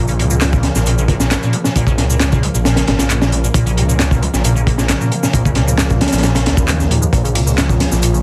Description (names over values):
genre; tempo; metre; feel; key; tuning
breakbeat, breaks; 134 BPM; 4/4; straight; Bb minor pentatonic; A4 = 439 Hz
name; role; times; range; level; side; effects
warbly tape-like pad; sustained chords; 0.0-8.2 s; Db3 to Bb4; -24 LUFS; equal; chorus, built-in reverb, sidechain pumping
deep acid bass; riff; 0.0-8.2 s; Bb1 to Bb3; -22 LUFS; equal; lush chorus, cassette tape, digital delay
detuned saw bass; bass; 0.0-8.2 s; Ab1 to Eb2; -19 LUFS; equal; none
crunchy breakbeat drum kit; drums; 0.1-8.1 s; hi-hat, kick drum, snare drum; -19 LUFS; equal; none
house drum kit; drums; 0.1-8.2 s; handclaps, ride cymbal, shaker; -25 LUFS; equal; none
room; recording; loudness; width
moderate studio reverb, RT60 0.6 s; dense, heavily limited modern master; -15 LUFS; mono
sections
0.0-8.2 A section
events
none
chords
0.0 Bbm